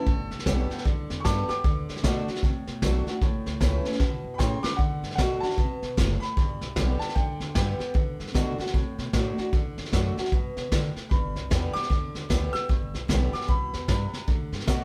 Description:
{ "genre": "rockabilly", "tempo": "152 BPM", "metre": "4/4", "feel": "swing 62% on 8ths", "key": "D mixolydian", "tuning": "A4 = 444 Hz", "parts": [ { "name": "clear upright piano", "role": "melody", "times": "0.0-7.9, 11.1-14.2 s", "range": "A4 to E6", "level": "-36 LUFS", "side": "equal", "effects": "none" }, { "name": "picked steel-string acoustic guitar", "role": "accompaniment", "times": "0.0-14.8 s", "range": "G2 to G4", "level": "-35 LUFS", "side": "equal", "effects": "none" }, { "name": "upright bass", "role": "bass", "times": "0.1-14.8 s", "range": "F#1 to D3", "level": "-33 LUFS", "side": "equal", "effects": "none" }, { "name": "vintage brush drum kit", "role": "drums", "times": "0.1-14.8 s", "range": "hi-hat, kick drum, snare drum", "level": "-29 LUFS", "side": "equal", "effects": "none" } ], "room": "light reverb", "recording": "band playing live in one room", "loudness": "-27 LUFS", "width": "mono", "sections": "0.0-4.8 A section; 4.8-14.8 B section", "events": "upright piano solo 0.0-4.8; drum fill 4.0-4.8", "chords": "0.1 G; 1.6 D; 3.2 A; 4.8 D; 6.4 G; 8.0 D; 11.1 G; 14.3 D", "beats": "| 0.06 0.46 0.85 1.24 | 1.64 2.03 2.43 2.82 | 3.21 3.61 4.00 4.40 | 4.79 5.19 5.58 5.98 | 6.37 6.77 7.16 7.56 | 7.95 8.35 8.74 9.14 | 9.53 9.93 10.32 10.72 | 11.11 11.51 11.90 12.30 | 12.70 13.09 13.49 13.88 | 14.28 14.68" }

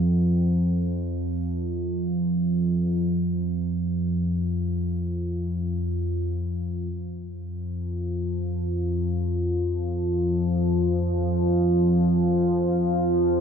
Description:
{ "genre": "ambient", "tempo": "free time", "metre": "none", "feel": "none", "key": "unclear", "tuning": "A4 = 440 Hz", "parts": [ { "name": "analog drone", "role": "solo", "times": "0.0-13.4 s", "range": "F2 to F3", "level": "-22 LUFS", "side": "equal", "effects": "chorus, analog delay" } ], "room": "moderate plate reverb, RT60 3.1 s", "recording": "echo-heavy mix", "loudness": "-22 LUFS", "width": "side -7 dB against mid", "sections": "0.0-6.9 A section; 6.9-13.4 B section", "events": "none", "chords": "none", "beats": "free time" }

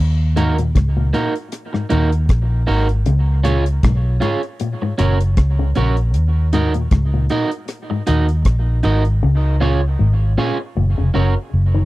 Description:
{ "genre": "dub reggae", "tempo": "78 BPM", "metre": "4/4", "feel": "swing 56% on 16ths", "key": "Eb minor", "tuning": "A4 = 439 Hz", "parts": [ { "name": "vintage muted fingered electric bass", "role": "bass", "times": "0.0-11.8 s", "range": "F1 to Eb2", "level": "-16 LUFS", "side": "equal", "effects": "none" }, { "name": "electric guitar at the edge of break-up", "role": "accompaniment", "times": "0.4-11.3 s", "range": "Bb3 to Eb5", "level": "-22 LUFS", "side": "right 3 dB", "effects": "dub echo" }, { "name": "electric guitar with an envelope filter", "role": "arpeggios", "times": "0.4-11.8 s", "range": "Ab2 to Eb3", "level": "-24 LUFS", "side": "left 4 dB", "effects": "dub echo" }, { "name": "deep reggae drum kit", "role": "drums", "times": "0.4-9.2 s", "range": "hi-hat, kick drum, rim click", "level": "-18 LUFS", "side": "equal", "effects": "none" } ], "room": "little or no reverb", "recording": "dry, close 1970s-style studio recording", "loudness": "-15 LUFS", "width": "side -18 dB against mid", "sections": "0.0-11.8 A section", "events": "part muted 9.2-11.8", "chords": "0.0 Ebm; 3.1 Db; 4.6 Gb; 6.1 Ebm; 9.2 Db; 10.8 Gb", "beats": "0.76 1.52 2.29 | 3.06 3.83 4.60 5.37 | 6.14 6.91 7.68 8.45 | 9.22 9.99 10.76 11.53" }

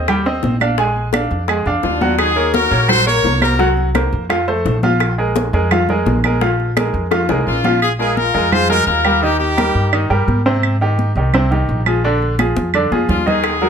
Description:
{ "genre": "latin, salsa", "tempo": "171 BPM", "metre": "4/4", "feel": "straight", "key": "unclear", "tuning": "A4 = 440 Hz", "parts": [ { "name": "bright upright piano", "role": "accompaniment", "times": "0.0-13.7 s", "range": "C3 to Ab5", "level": "-18 LUFS", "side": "right 1 dB", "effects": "none" }, { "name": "upright bass", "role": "bass", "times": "0.0-13.7 s", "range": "Bb1 to Ab2", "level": "-19 LUFS", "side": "equal", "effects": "none" }, { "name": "bongos", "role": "percussion", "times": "0.1-7.7, 13.4-13.7 s", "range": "none", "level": "-24 LUFS", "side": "left 6 dB", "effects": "none" }, { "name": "claves", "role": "percussion", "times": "0.1-13.6 s", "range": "none", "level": "-22 LUFS", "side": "right 9 dB", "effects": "none" }, { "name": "congas", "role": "percussion", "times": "0.1-13.7 s", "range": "none", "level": "-22 LUFS", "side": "equal", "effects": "none" }, { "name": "brilliant horn section", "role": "melody", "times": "1.8-3.8, 7.5-10.1, 13.1-13.7 s", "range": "Db4 to Db5", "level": "-16 LUFS", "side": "left 2 dB", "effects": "plate reverb" } ], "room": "moderate studio reverb, RT60 0.5 s", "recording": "none", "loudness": "-13 LUFS", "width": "side -7 dB against mid", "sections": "0.0-7.8 A section; 7.8-13.7 A section", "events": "drum fill 7.1-7.8, 12.6-13.4", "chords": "0.0 Abmaj9 (rootless); 0.8 Bb7; 2.2 Ebm7; 3.6 Gbmaj7#11/C; 4.3 F; 5.0 Bb7(no3); 7.8 Bb5; 9.2 Eb; 10.6 Abmaj9; 12.0 Bb7", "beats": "0.08 0.43 | 0.78 1.13 1.49 1.84 | 2.19 2.54 2.89 3.25 | 3.60 3.95 4.30 4.65 | 5.00 5.36 5.71 6.06 | 6.41 6.76 7.11 7.47 | 7.82 8.17 8.52 8.87 | 9.22 9.57 9.93 10.28 | 10.63 10.98 11.33 11.68 | 12.04 12.39 12.74 13.09 | 13.44" }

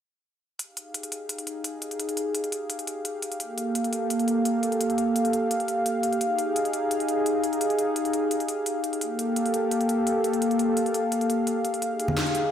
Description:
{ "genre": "liquid drum and bass", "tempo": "171 BPM", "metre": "4/4", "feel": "straight", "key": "unclear", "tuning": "A4 = 439 Hz", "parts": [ { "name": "warm analog pad", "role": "sustained chords", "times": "0.6-12.5 s", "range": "Bb3 to F5", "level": "-24 LUFS", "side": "equal", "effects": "chorus" }, { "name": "drum and bass drum kit", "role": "drums", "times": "0.6-12.4 s", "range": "hi-hat, snare drum", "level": "-32 LUFS", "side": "equal", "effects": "small room reverb" }, { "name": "congas", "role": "percussion", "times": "12.1-12.2 s", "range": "none", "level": "-28 LUFS", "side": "right 1 dB", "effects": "none" } ], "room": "wet lush hall reverb, RT60 1.6 s", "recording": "dreamy mix soaked in reverb", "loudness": "-24 LUFS", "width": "side -9 dB against mid", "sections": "0.6-12.5 A section", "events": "none", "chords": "0.6 Fm9; 3.4 Gm9; 6.2 Fm9; 9.0 Gm9; 11.8 Fm9", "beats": "| 0.59 0.94 1.30 1.65 | 2.00 2.35 2.70 3.05 | 3.40 3.75 4.10 4.45 | 4.80 5.16 5.51 5.86 | 6.21 6.56 6.91 7.26 | 7.61 7.96 8.31 8.66 | 9.02 9.37 9.72 10.07 | 10.42 10.77 11.12 11.47 | 11.82 12.17" }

